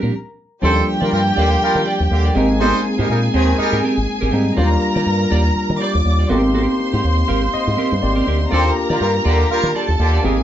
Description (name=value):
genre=disco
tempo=122 BPM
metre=4/4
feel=swing 56% on 16ths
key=unclear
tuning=A4 = 440 Hz
part: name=warm studio violin section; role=second line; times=0.0-10.4 s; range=G4 to D6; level=-22 LUFS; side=equal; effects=none
part: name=barky tine electric piano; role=accompaniment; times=0.0-10.4 s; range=F3 to F5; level=-21 LUFS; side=left 2 dB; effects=none
part: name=clean electric guitar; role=accompaniment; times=0.0-10.4 s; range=C4 to D5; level=-23 LUFS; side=right 4 dB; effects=none
part: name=fingered electric bass with an envelope filter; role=bass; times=0.0-10.4 s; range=Ab1 to Eb3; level=-18 LUFS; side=equal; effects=none
part: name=clear horn section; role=stabs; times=0.6-3.8, 8.5-10.2 s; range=D3 to C5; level=-20 LUFS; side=equal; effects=none
room=moderate small room ambience, RT60 0.5 s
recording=band playing live in one room, nothing above 7.6 kHz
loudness=-14 LUFS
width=side -11 dB against mid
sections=0.6-10.4 A section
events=stop 0.1-0.6; tine electric piano fill 7.0-8.5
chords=0.0 Bb6; 0.6 Ebmaj9; 2.4 Abmaj9; 4.6 Ebmaj9; 6.3 Abmaj9; 8.5 Ebmaj9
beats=0.13 | 0.62 1.12 1.61 2.11 | 2.60 3.09 3.59 4.08 | 4.57 5.07 5.56 6.05 | 6.54 7.04 7.53 8.02 | 8.52 9.01 9.50 9.99